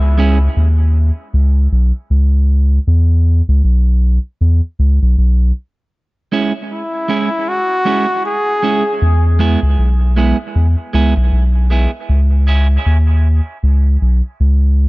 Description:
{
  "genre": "dub reggae",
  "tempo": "78 BPM",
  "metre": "4/4",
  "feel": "swing 59% on 16ths",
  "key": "C# minor",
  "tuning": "A4 = 440 Hz",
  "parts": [
    { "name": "soft dub sub bass", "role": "bass", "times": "0.0-14.9 s", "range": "B1 to E2", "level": "-11 LUFS", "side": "equal", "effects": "none" },
    { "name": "clean electric guitar", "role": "accompaniment", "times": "0.2-0.4, 6.3-12.7 s", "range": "G#3 to G#4", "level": "-20 LUFS", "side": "right 4 dB", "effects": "high-pass filter, dub echo" },
    { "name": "warm flugelhorn", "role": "melody", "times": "6.7-9.0 s", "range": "E4 to G#4", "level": "-18 LUFS", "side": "left 1 dB", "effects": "dub echo" }
  ],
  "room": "little or no reverb",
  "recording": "echo-heavy mix, nothing above 7.6 kHz",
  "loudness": "-12 LUFS",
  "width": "side -21 dB against mid",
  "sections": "0.0-5.9 A section; 5.9-14.9 B section",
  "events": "break 0.0-5.9, 5.9-9.0",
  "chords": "0.0 C#5; 2.9 E5; 5.9 C#m; 9.0 E; 12.1 C#5",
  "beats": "0.56 1.33 2.10 | 2.87 3.63 4.40 5.17 | 5.94 6.71 7.48 8.24 | 9.01 9.78 10.55 11.32 | 12.09 12.86 13.62 14.39"
}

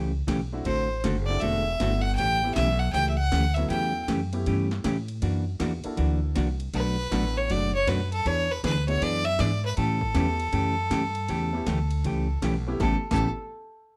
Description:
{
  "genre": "country, western swing",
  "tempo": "158 BPM",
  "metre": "4/4",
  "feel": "swing 64% on 8ths",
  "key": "A mixolydian",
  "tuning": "A4 = 441 Hz",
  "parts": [
    { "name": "hollow-body jazz guitar", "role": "accompaniment", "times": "0.0-13.3 s", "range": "A2 to A4", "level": "-32 LUFS", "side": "equal", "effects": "none" },
    { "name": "upright bass", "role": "bass", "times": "0.0-13.3 s", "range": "E1 to A2", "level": "-30 LUFS", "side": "equal", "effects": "none" },
    { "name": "punchy analog drum machine", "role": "drums", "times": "0.3-13.2 s", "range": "crash cymbal, hi-hat, kick drum, ride cymbal, snare drum", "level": "-38 LUFS", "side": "equal", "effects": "none" },
    { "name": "clear upright piano", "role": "accompaniment", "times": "0.5-13.3 s", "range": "F#3 to A4", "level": "-37 LUFS", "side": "equal", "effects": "none" },
    { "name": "clear fiddle", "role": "melody", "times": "0.6-4.0, 6.8-13.3 s", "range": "A4 to G5", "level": "-30 LUFS", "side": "equal", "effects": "none" }
  ],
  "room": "light reverb",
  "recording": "none",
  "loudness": "-26 LUFS",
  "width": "mono",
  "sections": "0.0-12.8 A section; 12.8-14.0 B section",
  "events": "none",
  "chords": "0.0 A9; 0.7 D9; 2.2 A9; 5.2 F#7alt; 6.7 Bm7; 8.3 E9; 9.8 A9",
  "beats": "0.27 | 0.65 1.03 1.42 1.80 | 2.18 2.56 2.94 3.32 | 3.70 4.08 4.46 4.84 | 5.22 5.60 5.98 6.36 | 6.74 7.12 7.50 7.87 | 8.25 8.63 9.01 9.39 | 9.77 10.15 10.53 10.91 | 11.29 11.66 12.04 12.42 | 12.80 13.18"
}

